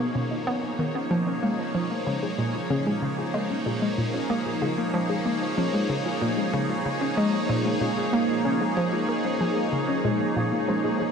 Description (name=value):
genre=ambient, sequencer-driven space music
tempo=94 BPM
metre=4/4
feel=straight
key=Bb phrygian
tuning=A4 = 440 Hz
part: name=evolving wavetable pad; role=sustained chords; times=0.0-11.1 s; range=B2 to C#5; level=-26 LUFS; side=right 1 dB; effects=phaser, built-in reverb
part: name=warbly dusty pluck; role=arpeggios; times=0.0-11.1 s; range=Ab3 to D#5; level=-30 LUFS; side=left 3 dB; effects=chorus, auto-pan, analog delay
part: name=hollow square pluck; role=riff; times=0.0-11.1 s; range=Bb2 to B3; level=-28 LUFS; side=right 1 dB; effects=chorus, analog delay
room=wet huge ambient reverb, RT60 7.1 s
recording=dreamy mix soaked in reverb, cassette tape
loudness=-23 LUFS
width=side -6 dB against mid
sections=0.0-11.1 A section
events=fade-in on ambient pad 0.0-11.1; filter sweep on synth arpeggio sound 0.0-11.1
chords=0.0 Badd9; 1.1 Bbm7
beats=0.47 | 1.11 1.75 2.39 3.02 | 3.66 4.30 4.94 5.58 | 6.22 6.85 7.49 8.13 | 8.77 9.41 10.05 10.68